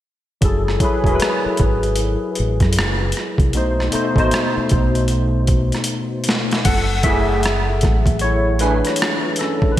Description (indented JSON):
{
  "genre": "R&B, neo-soul",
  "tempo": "77 BPM",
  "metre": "4/4",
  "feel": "swing 61% on 16ths",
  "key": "F# minor",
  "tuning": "A4 = 441 Hz",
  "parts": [
    { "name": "barky tine electric piano", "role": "accompaniment", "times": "0.4-9.8 s", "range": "B2 to F#5", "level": "-20 LUFS", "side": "left 2 dB", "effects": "overdrive, ensemble chorus" },
    { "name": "deep dub fingered electric bass", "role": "bass", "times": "0.4-8.8 s", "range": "E1 to F#2", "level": "-20 LUFS", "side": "equal", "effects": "none" },
    { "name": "boom bap sampler-style drum kit", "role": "drums", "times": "0.4-9.8 s", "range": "crash cymbal, hi-hat, kick drum, rim click, snare drum", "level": "-19 LUFS", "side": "equal", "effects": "overdrive, gated reverb" },
    { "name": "electric guitar through a small old amp", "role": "second line", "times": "7.0-8.8 s", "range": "A3 to G#4", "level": "-25 LUFS", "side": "right 5 dB", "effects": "ensemble chorus" }
  ],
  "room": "light reverb",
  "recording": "bright 1980s-style digital production",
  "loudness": "-15 LUFS",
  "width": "side -13 dB against mid",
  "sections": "0.4-6.7 A section; 6.7-9.8 B section",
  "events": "drum fill 5.9-6.7; tine electric piano solo 6.7-9.8",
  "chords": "0.4 F#m9; 3.5 B7b9; 6.7 F#m9"
}